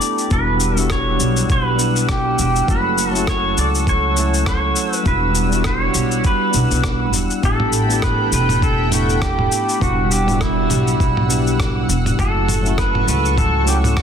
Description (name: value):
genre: sunset chillout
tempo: 101 BPM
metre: 4/4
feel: swing 57% on 16ths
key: E dorian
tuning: A4 = 437 Hz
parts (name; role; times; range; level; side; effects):
- pedal steel guitar; melody; 0.0-14.0 s; E4 to D5; -21 LUFS; right 1 dB; tape echo
- tine electric piano; accompaniment; 0.0-14.0 s; F#3 to A4; -23 LUFS; right 1 dB; auto-pan, low-pass filter, digital delay
- lush unison pad; sustained chords; 0.0-14.0 s; G3 to E6; -25 LUFS; equal; chorus
- dusty soul sampler-style drum kit; drums; 0.0-14.0 s; cabasa, rim click, toms; -23 LUFS; left 1 dB; overdrive, soft clipping on snare
- upright bass; bass; 0.3-14.0 s; E1 to C#2; -20 LUFS; equal; none
- electronic kick drum; drums; 0.3-14.0 s; none; -20 LUFS; equal; overdrive
room: light reverb, digital ambience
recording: dense, heavily limited modern master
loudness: -15 LUFS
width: side -8 dB against mid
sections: 0.0-14.0 A section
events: none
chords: 0.3 Em9; 2.7 F#m7; 5.1 Em9; 7.4 A9sus4; 9.8 Em9; 12.2 F#m7